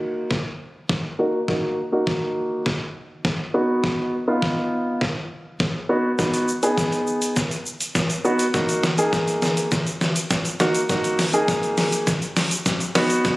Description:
dance-pop; 102 BPM; 4/4; straight; F# major; A4 = 440 Hz
warm baby grand piano; accompaniment; 0.0-13.4 s; A#3 to G#4; -21 LUFS; equal; sidechain pumping, low-pass filter
trip hop sampler-style drum kit; drums; 0.3-13.4 s; hi-hat, kick drum, shaker, snare drum; -23 LUFS; equal
light reverb, digital ambience; recorded on a phone in the room, club reverb, compression; -20 LUFS; side -20 dB against mid
0.0-13.4 A section
build-up 0.0-13.4; drum fill 0.0-13.4; filter sweep on grand piano 0.0-13.4
0.0 F#6; 3.5 B; 8.5 F#6
0.31 0.90 | 1.48 2.07 2.66 3.25 | 3.84 4.42 5.01 5.60 | 6.19 6.78 7.37 7.95 | 8.54 9.13 9.72 10.31 | 10.89 11.48 12.07 12.66 | 13.25

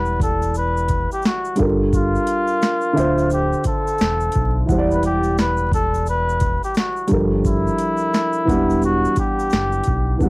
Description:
lo-fi hip hop; 87 BPM; 4/4; swing 60% on 16ths; A4 = 438 Hz
trumpet with cup mute; melody; 0.0-10.2 s; E4 to B4; -21 LUFS; left 1 dB; low-pass filter, cassette tape
dark upright piano; accompaniment; 0.0-10.3 s; D3 to F#5; -21 LUFS; right 1 dB; low-pass filter, cassette tape
sub bass with octave; bass; 0.0-10.3 s; D1 to B1; -22 LUFS; equal
booming analog drum machine; drums; 0.1-10.3 s; finger snaps, hi-hat, kick drum, shaker, snare drum; -22 LUFS; equal; overdrive, cassette tape
tube shaker; percussion; 0.2-10.1 s; -46 LUFS; left 2 dB
light reverb; home recording on cassette, vinyl crackle; -16 LUFS; side -24 dB against mid
0.0-10.2 A section
0.0 Em9; 1.6 Gm9; 3.0 Dm9; 4.7 Em9; 7.1 Gm9; 8.5 Em9
0.55 1.24 | 1.93 2.62 3.31 4.00 | 4.69 5.38 6.07 6.76 | 7.45 8.14 8.83 9.52 | 10.21

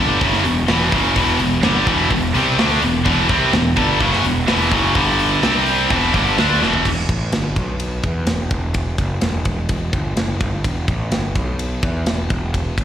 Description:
heavy metal; 127 BPM; 4/4; straight; E minor; A4 = 440 Hz
heavy high-gain guitar; riff; 0.0-6.8 s; E2 to D4; -15 LUFS; equal; distortion, slapback echo
fuzz picked electric bass; bass; 0.0-12.8 s; E1 to E2; -21 LUFS; equal; overdrive
tight metal drum kit; drums; 0.2-12.8 s; crash cymbal, hi-hat, kick drum, ride cymbal, snare drum, toms; -22 LUFS; equal
light reverb, small room ambience; live gig heard through the venue's PA, recital hall reverb; -15 LUFS; side -10 dB against mid
0.0-6.8 A section; 6.8-12.8 B section
drum fill 6.6
0.0 Em; 5.0 G5; 5.4 C5; 5.9 Em; 7.6 N.C.; 8.0 Em; 11.4 N.C.
0.21 0.69 | 1.16 1.64 2.11 2.58 | 3.06 3.53 4.00 4.48 | 4.95 5.43 5.90 6.37 | 6.85 7.32 7.80 8.27 | 8.75 9.22 9.70 10.17 | 10.64 11.12 11.59 12.06 | 12.54

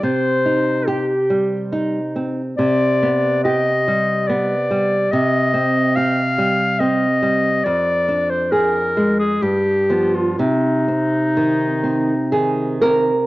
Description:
romantic duo for clarinet and classical guitar; 60-72 BPM; 3/4; rubato; C minor; A4 = 439 Hz
warm clarinet; melody; 0.0-12.8 s; Eb4 to F5; -18 LUFS; left 1 dB; cassette tape
nylon-string guitar; accompaniment; 0.0-13.3 s; F2 to Bb4; -18 LUFS; right 1 dB
moderate spring reverb, RT60 2.2 s; home recording on cassette, nothing above 7.9 kHz; -16 LUFS; side -18 dB against mid
0.0-13.3 A section
0.0 Cm; 2.6 G/C; 5.1 Cm; 7.6 Ddim/F; 9.4 G7; 10.4 Cm
| 0.04 0.88 1.73 | 2.58 3.44 4.28 | 5.12 5.95 6.79 | 7.65 8.52 9.42 | 10.39 11.37 12.32

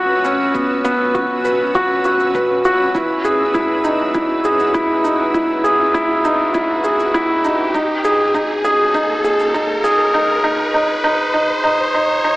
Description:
piano and strings electronica; 100 BPM; 4/4; straight; C# dorian; A4 = 438 Hz
granular cloud pad; sustained chords; 0.0-10.2 s; A#3 to E6; -24 LUFS; equal; built-in reverb
felt-muted upright piano; riff; 0.0-12.4 s; B3 to B4; -15 LUFS; equal; tape echo
riser; sound effects; 0.2-12.4 s; -24 LUFS; equal
shaker; drums; 0.2-10.0 s; -44 LUFS; equal; high-pass filter on perc
electronic kick drum; drums; 0.5-9.7 s; -32 LUFS; equal
wet scoring stage reverb, RT60 2.2 s; high-pass filter, AM radio sound; -14 LUFS; side -19 dB against mid
0.0-12.4 A section
build-up 0.0-12.4; filter sweep 0.0-12.4; riser 0.2-12.4
0.0 Bsus2; 2.9 C#madd9; 7.7 G#sus2
| 0.55 1.15 1.75 2.35 | 2.95 3.55 4.15 4.75 | 5.35 5.95 6.55 7.15 | 7.75 8.35 8.95 9.55 | 10.15 10.75 11.35 11.95

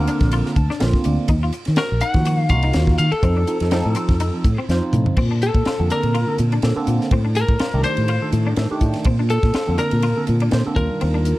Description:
electric jazz fusion; 124 BPM; 4/4; swing 54% on 16ths; Bb major; A4 = 440 Hz
lightly driven lead guitar; melody; 0.0-11.4 s; A4 to Gb5; -23 LUFS; left 2 dB
barky tine electric piano; accompaniment; 0.0-11.4 s; D3 to A5; -24 LUFS; right 2 dB; overdrive, phaser
clean electric guitar; stabs; 0.0-11.3 s; C4 to Gb4; -30 LUFS; left 4 dB; ensemble chorus
fretless electric bass; bass; 0.0-11.3 s; Bb1 to Eb3; -19 LUFS; equal; ensemble chorus
tight funk drum kit; drums; 0.1-11.4 s; crash cymbal, hi-hat, kick drum, ride cymbal, snare drum, toms; -22 LUFS; equal
small room ambience; dark, warm production; -16 LUFS; side -17 dB against mid
0.0-5.2 A section; 5.2-11.4 B section
tine electric piano fill 0.3-1.3, 4.4-5.2; drum fill 4.7-5.2; lead electric guitar solo 5.2-11.4
0.0 Bbmaj9; 1.3 Ebmadd9; 3.2 F7; 5.2 Bbmaj9; 7.1 F13; 9.1 Bbmaj9; 10.8 Ebmaj9
0.32 0.81 | 1.29 1.78 2.26 2.75 | 3.23 3.72 4.20 4.69 | 5.17 5.66 6.15 6.63 | 7.12 7.60 8.09 8.58 | 9.06 9.55 10.03 10.52 | 11.01

